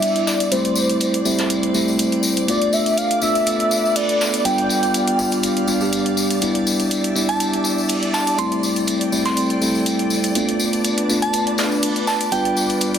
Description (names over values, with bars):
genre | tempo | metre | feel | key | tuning
deep house | 122 BPM | 4/4 | swing 54% on 16ths | A minor | A4 = 438 Hz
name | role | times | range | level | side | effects
warm velvety synth lead | melody | 0.0-5.4 s | C5 to G5 | -21 LUFS | right 1 dB | chorus, tape echo
airy breathy pad | sustained chords | 0.0-13.0 s | G3 to A5 | -27 LUFS | right 1 dB | chorus
bell-like tine electric piano | stabs | 0.0-13.0 s | G3 to G4 | -20 LUFS | equal | wide subtle chorus, low-pass filter, tape echo
electronic hi-hat | drums | 0.0-13.0 s | none | -25 LUFS | equal | overdrive, small room ambience
vintage brush drum kit | drums | 0.0-12.9 s | hi-hat, snare drum, tambourine | -28 LUFS | equal | high-pass filter on hats, low-pass filter on hats, small room ambience, soft clipping on snare, high-pass filter on snare, low-pass filter on snare, high-pass filter on perc, low-pass filter on perc, high-pass filter on room, low-pass filter on room
tambourine | percussion | 0.0-12.9 s | none | -28 LUFS | left 4 dB | none
string machine, violins | texture | 0.0-13.0 s | D5 | -29 LUFS | equal | ensemble chorus
glassy synth bell | melody | 7.3-13.0 s | G5 to C6 | -24 LUFS | right 3 dB | chorus, tape echo
room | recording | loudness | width
moderate plate reverb, RT60 1.7 s, small room ambience | dense, heavily limited modern master | -16 LUFS | side -8 dB against mid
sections
0.0-13.0 A section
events
none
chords
0.0 Em7; 0.5 Am7; 2.5 Bm7b5; 4.5 G7; 6.4 Em7; 8.4 Am7; 10.4 Bm7b5; 12.3 G7